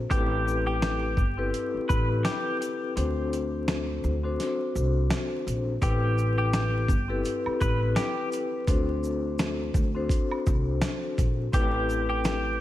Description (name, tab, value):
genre	hip hop, boom-bap hip-hop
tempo	84 BPM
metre	4/4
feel	swing 58% on 16ths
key	A dorian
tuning	A4 = 440 Hz
part	upright bass	bass	0.0-12.6 s	G1 to D2	-28 LUFS	equal	none
part	semi-hollow electric guitar	melody	0.1-12.6 s	G4 to B4	-32 LUFS	equal	wide subtle chorus, high-pass filter, low-pass filter, ping-pong delay
part	vibraphone with medium mallets	accompaniment	0.1-12.5 s	C4 to C5	-30 LUFS	left 3 dB	high-pass filter, low-pass filter
part	dusty soul sampler-style drum kit	drums	0.1-12.4 s	hi-hat, kick drum, shaker, snare drum	-28 LUFS	equal	none
part	maracas and woodblock	percussion	5.8-12.4 s	none	-40 LUFS	right 4 dB	none
room	light reverb, small room ambience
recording	vinyl crackle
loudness	-24 LUFS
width	side -14 dB against mid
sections	0.0-12.6 A section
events	kick muted 3.0-5.8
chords	0.1 Am9; 3.0 D7; 5.8 Am9; 8.7 D7; 11.5 Am9